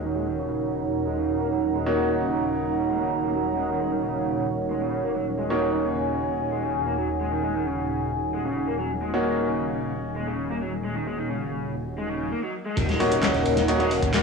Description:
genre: breakbeat, breaks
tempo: 132 BPM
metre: 4/4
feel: straight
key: unclear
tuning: A4 = 443 Hz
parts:
  - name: dark analog pad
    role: sustained chords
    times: 0.0-14.2 s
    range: Eb4 to Bb5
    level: -27 LUFS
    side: right 2 dB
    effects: chorus, sidechain pumping, cassette tape
  - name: crunchy overdriven guitar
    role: riff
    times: 0.0-14.2 s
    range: Db3 to Bb3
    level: -30 LUFS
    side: equal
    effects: low-pass filter, cassette tape, tape echo
  - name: bright grand piano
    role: stabs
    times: 0.0-13.9 s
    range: Bb3 to Db5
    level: -27 LUFS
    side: equal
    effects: cassette tape, tape echo
  - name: phased detuned saw bass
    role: bass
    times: 0.0-14.2 s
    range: Eb1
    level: -32 LUFS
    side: left 1 dB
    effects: phaser
  - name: swell and impact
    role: sound effects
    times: 11.9-14.2 s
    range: none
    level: -34 LUFS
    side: equal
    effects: none
  - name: crunchy breakbeat drum kit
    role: drums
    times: 12.8-14.2 s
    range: kick drum, ride cymbal, snare drum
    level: -27 LUFS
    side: left 1 dB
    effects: cassette tape
  - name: house drum kit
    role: drums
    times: 12.8-14.2 s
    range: handclaps, hi-hat, ride cymbal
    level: -31 LUFS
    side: equal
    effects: cassette tape
room: moderate spring reverb, RT60 1.7 s, studio ambience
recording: home recording on cassette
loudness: -23 LUFS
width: side -4 dB against mid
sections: 0.0-12.8 A section; 12.8-14.2 B section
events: swell 11.9-12.8; drop 12.8-14.2; impact 12.8-14.2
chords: 0.0 Ebm7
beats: | 0.05 0.50 0.96 1.41 | 1.87 2.32 2.77 3.23 | 3.68 4.14 4.59 5.05 | 5.50 5.96 6.41 6.87 | 7.32 7.78 8.23 8.68 | 9.14 9.59 10.05 10.50 | 10.96 11.41 11.87 12.32 | 12.78 13.23 13.68 14.14

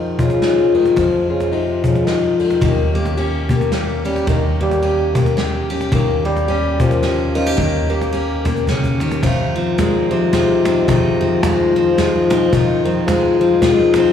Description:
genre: acoustic folk duo or small band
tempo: 109 BPM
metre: 3/4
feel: swing 59% on 8ths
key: F minor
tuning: A4 = 440 Hz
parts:
  - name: mellow bassoon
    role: second line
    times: 0.0-14.1 s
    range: Bb2 to Bb3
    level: -21 LUFS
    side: right 1 dB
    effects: plate reverb, slapback echo
  - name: fingerpicked plugged-in steel-string acoustic guitar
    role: accompaniment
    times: 0.0-14.1 s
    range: F2 to G4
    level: -18 LUFS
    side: left 6 dB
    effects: slapback echo
  - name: upright bass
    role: bass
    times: 0.0-9.2 s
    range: Eb2 to F2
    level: -22 LUFS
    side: equal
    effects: none
  - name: cajon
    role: percussion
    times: 0.2-14.0 s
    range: none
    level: -21 LUFS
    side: equal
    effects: slapback echo
  - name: soft brush drum kit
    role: drums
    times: 0.4-14.1 s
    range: crash cymbal, kick drum, ride cymbal, snare drum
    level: -26 LUFS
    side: equal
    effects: none
  - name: picked steel-string acoustic guitar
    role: arpeggios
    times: 2.6-14.1 s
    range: Eb3 to G4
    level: -22 LUFS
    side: right 4 dB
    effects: plate reverb, slapback echo
room: moderate club reverb, RT60 0.7 s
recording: live gig heard through the venue's PA, recital hall reverb, studio reverb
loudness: -14 LUFS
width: side -8 dB against mid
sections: 0.0-9.2 A section; 9.2-14.1 B section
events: bassoon solo 0.0-9.2; drum fill 8.5-9.2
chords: 0.0 Fm7; 2.6 Eb7; 9.2 Fm7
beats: 0.42 | 0.97 1.52 2.07 | 2.62 3.18 3.73 | 4.28 4.83 5.38 | 5.93 6.48 7.03 | 7.58 8.13 8.68 | 9.23 9.78 10.33 | 10.88 11.43 11.97 | 12.52 13.07 13.62

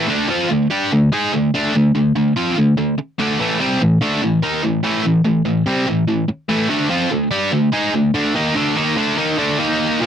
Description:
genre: metal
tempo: 145 BPM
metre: 4/4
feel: straight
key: unclear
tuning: A4 = 439 Hz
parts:
  - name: distorted electric guitar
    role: solo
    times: 0.0-10.1 s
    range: A2 to G#4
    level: -15 LUFS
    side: equal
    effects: overdrive
room: light reverb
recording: dry, close 1970s-style studio recording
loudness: -15 LUFS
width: side -9 dB against mid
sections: 0.0-10.0 A section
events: none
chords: 0.1 D5; 3.4 Am; 6.7 D5; 9.6 D#5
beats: | 0.10 0.51 0.92 1.33 | 1.75 2.16 2.57 2.98 | 3.40 3.81 4.22 4.63 | 5.05 5.46 5.87 6.29 | 6.70 7.11 7.52 7.94 | 8.35 8.77 9.18 9.59 | 10.01

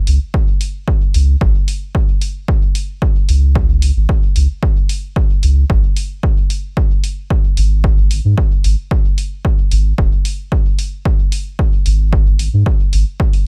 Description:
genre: dub techno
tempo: 112 BPM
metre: 4/4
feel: straight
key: unclear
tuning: A4 = 436 Hz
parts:
  - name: soft dub sub bass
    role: bass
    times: 0.1-13.0 s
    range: D#1 to G#2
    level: -14 LUFS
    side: equal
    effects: sidechain pumping
  - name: electronic hi-hat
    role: drums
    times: 0.1-13.4 s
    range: none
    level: -29 LUFS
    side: equal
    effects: small room reverb
  - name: electronic kick drum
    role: drums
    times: 0.3-13.3 s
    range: none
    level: -17 LUFS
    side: equal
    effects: small room reverb
room: digital ambience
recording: none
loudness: -15 LUFS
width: mono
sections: 0.0-13.5 A section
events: none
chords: none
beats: | 0.34 0.88 1.41 1.95 | 2.48 3.02 3.55 4.09 | 4.63 5.16 5.70 6.23 | 6.77 7.30 7.84 8.38 | 8.91 9.45 9.98 10.52 | 11.05 11.59 12.13 12.66 | 13.20

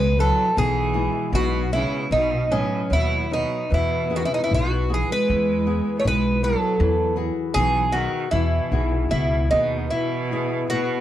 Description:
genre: fado-style ballad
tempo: 74-81 BPM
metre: 2/4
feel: rubato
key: E major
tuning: A4 = 440 Hz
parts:
  - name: Irish bouzouki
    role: melody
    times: 0.0-11.0 s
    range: C#4 to C#5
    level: -23 LUFS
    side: equal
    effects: none
  - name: bright cello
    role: second line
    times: 0.0-11.0 s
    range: A2 to A3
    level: -27 LUFS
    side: right 4 dB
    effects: none
  - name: flamenco guitar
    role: accompaniment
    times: 0.0-11.0 s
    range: B2 to E5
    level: -28 LUFS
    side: left 4 dB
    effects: none
  - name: upright bass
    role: bass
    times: 0.0-9.9 s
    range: B1 to E2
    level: -24 LUFS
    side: equal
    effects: none
room: light reverb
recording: dark, warm production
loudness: -19 LUFS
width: side -12 dB against mid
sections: 0.0-9.9 A section; 9.9-11.0 A section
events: none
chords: 0.0 E; 0.6 E/B; 2.1 B; 3.7 E; 6.8 Eadd9; 9.9 E/B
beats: | 0.56 1.33 | 2.11 2.90 | 3.71 4.51 | 5.29 6.05 | 6.80 7.55 | 8.32 9.12 | 9.92 10.71

